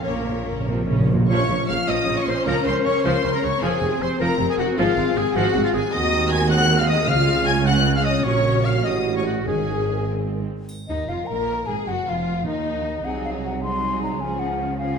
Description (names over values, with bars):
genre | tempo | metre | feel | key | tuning
classical, dramatic, fast romantic movement for symphony orchestra | 103 BPM (dotted quarters) | 6/8 | straight | Bb minor | A4 = 439 Hz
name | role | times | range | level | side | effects
warm symphonic violin section | melody | 0.0-15.0 s | Eb4 to Ab6 | -28 LUFS | left 4 dB | none
bright clarinet | second line | 0.0-0.7 s | Bb3 | -34 LUFS | equal | none
warm symphonic violin section | second line | 0.0-15.0 s | Db4 to Ab5 | -31 LUFS | left 2 dB | none
warm symphonic viola section | accompaniment | 0.0-15.0 s | C3 to Bb4 | -28 LUFS | right 1 dB | none
rich symphonic double bass section | bass | 0.0-15.0 s | F1 to Eb2 | -28 LUFS | right 4 dB | none
warm symphonic cello section | bass | 0.0-15.0 s | Eb2 to Gb3 | -28 LUFS | right 3 dB | none
timpani | percussion | 0.0-1.2, 7.1-10.0 s | Ab2 to Db3 | -25 LUFS | right 1 dB | none
clear oboe | second line | 1.3-10.1 s | F4 to Ab5 | -29 LUFS | right 1 dB | none
mellow hollow silver concert flute | second line | 1.3-15.0 s | F4 to C6 | -28 LUFS | left 3 dB | none
dark French horn section | sustained chords | 1.3-15.0 s | Eb3 to C5 | -27 LUFS | left 4 dB | none
mellow tuba | bass | 1.3-10.5 s | F1 to Eb2 | -29 LUFS | right 4 dB | none
triangle | percussion | 10.7-11.4 s | none | -47 LUFS | equal | none
room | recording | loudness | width
wet scoring stage reverb, RT60 1.6 s | none | -19 LUFS | side -6 dB against mid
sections
0.0-1.3 A section; 1.3-10.7 B section; 10.7-15.0 A section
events
timpani fill 0.0-1.3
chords
0.0 Bbm; 2.5 Bbm/Db; 3.6 Fm; 4.8 Fm/Ab; 5.9 Ab7/Eb; 7.1 Db; 8.2 Gb/Bb; 8.8 A7; 9.5 Absus4; 10.1 Ab; 10.7 Bb7sus4; 11.9 Ebm; 13.1 Ab7/C; 14.2 Db